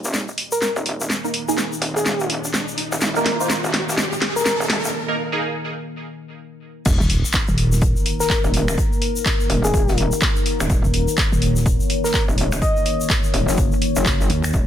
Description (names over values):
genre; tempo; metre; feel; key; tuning
bass house; 125 BPM; 4/4; swing 61% on 16ths; unclear; A4 = 441 Hz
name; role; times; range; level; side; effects
deep dark ambient pad; sustained chords; 0.0-14.7 s; Eb3 to Db5; -27 LUFS; left 2 dB; chorus, built-in reverb, sidechain pumping
metallic wobble bass; bass; 0.0-14.7 s; Eb1 to Gb1; -23 LUFS; equal; chorus, overdrive, sidechain pumping, high-pass filter
egg shaker; percussion; 0.0-14.7 s; none; -30 LUFS; left 3 dB; none
riser and sub drop; sound effects; 0.5-8.8 s; none; -28 LUFS; equal; none
garage drum kit; drums; 0.1-14.5 s; crash cymbal, finger snaps, handclaps, hi-hat, snare drum; -23 LUFS; equal; none
soft struck synth lead; melody; 0.5-4.5, 8.2-13.1 s; Ab4 to Eb5; -25 LUFS; left 1 dB; chorus, tape echo
band-passed chord stab; stabs; 1.2-5.4 s; Bb3 to C5; -24 LUFS; right 2 dB; phaser, ensemble chorus, sidechain pumping, tape echo
electronic kick drum; drums; 6.9-14.7 s; none; -20 LUFS; equal; none
unplugged drum kit; drums; 6.9-14.7 s; hi-hat, snare drum; -35 LUFS; left 4 dB; none
pulsing pluck wobble bass; bass; 7.0-7.9, 10.8-14.5 s; Eb1 to Eb2; -19 LUFS; equal; chorus, tube saturation, sidechain pumping
room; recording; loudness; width
light reverb; none; -17 LUFS; side -10 dB against mid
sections
0.0-6.9 A section; 6.9-14.7 B section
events
build-up 0.0-6.9; drum fill 0.0-4.9; filter sweep on synth stab 0.0-6.9; filter sweep on ambient pad 0.0-6.9; riser 0.5-4.9; break 4.9-6.9; drop 6.9-14.7; impact 6.9-8.8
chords
0.0 Eb5